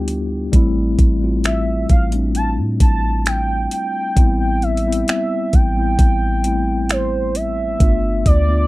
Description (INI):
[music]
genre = contemporary R&B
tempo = 66 BPM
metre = 4/4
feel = straight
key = A minor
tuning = A4 = 440 Hz
[part]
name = gliding portamento lead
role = melody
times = 0.0-8.7 s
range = C5 to A5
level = -22 LUFS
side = right 1 dB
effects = chorus
[part]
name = mellow tine electric piano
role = accompaniment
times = 0.0-8.7 s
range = G3 to G4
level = -22 LUFS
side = left 2 dB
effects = medium stereo tremolo
[part]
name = soft 808-style bass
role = bass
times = 0.0-8.7 s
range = G1 to A2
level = -19 LUFS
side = equal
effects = none
[part]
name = smooth R&B drum kit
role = drums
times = 0.1-8.5 s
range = finger snaps, hi-hat, kick drum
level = -15 LUFS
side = equal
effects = none
[sound]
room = little or no reverb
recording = dark, warm production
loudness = -15 LUFS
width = side -19 dB against mid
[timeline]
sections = 0.0-8.7 A section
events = none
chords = 0.0 G13; 0.5 Fmaj9/A; 4.2 Am7; 7.8 G7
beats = | 0.53 1.44 2.35 3.26 | 4.17 5.08 5.99 6.89 | 7.80